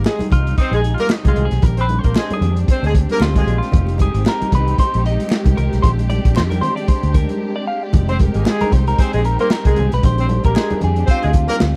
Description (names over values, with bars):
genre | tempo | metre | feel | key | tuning
funk | 114 BPM | 4/4 | swing 56% on 16ths | F dorian | A4 = 441 Hz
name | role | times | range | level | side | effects
dark horn section | second line | 0.0-3.6, 8.1-11.6 s | Ab3 to C5 | -24 LUFS | equal | none
dark studio string section | sustained chords | 0.0-11.8 s | Ab3 to G4 | -28 LUFS | equal | none
vintage muted fingered electric bass | bass | 0.0-11.8 s | F1 to F2 | -20 LUFS | equal | none
crunchy breakbeat drum kit | drums | 0.1-11.7 s | hi-hat, kick drum, snare drum | -18 LUFS | equal | none
group handclap | percussion | 0.1-11.7 s | none | -38 LUFS | equal | none
congas | percussion | 0.2-11.6 s | none | -29 LUFS | equal | none
clean electric guitar | accompaniment | 0.3-11.8 s | Eb4 to F5 | -26 LUFS | equal | wah, subtle chorus
room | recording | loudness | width
little or no reverb | dry, close 1970s-style studio recording | -17 LUFS | mono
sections
0.0-11.8 A section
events
clean electric guitar solo 0.0-11.8; break 7.4-7.9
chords
0.0 Fm9; 1.6 Bb13; 3.7 Fm9; 5.8 Bb13; 7.9 Fm9; 10.0 Bb13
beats
0.06 0.58 1.11 | 1.63 2.16 2.68 3.21 | 3.73 4.26 4.78 5.31 | 5.83 6.36 6.88 7.41 | 7.93 8.46 8.98 9.51 | 10.03 10.56 11.09 11.61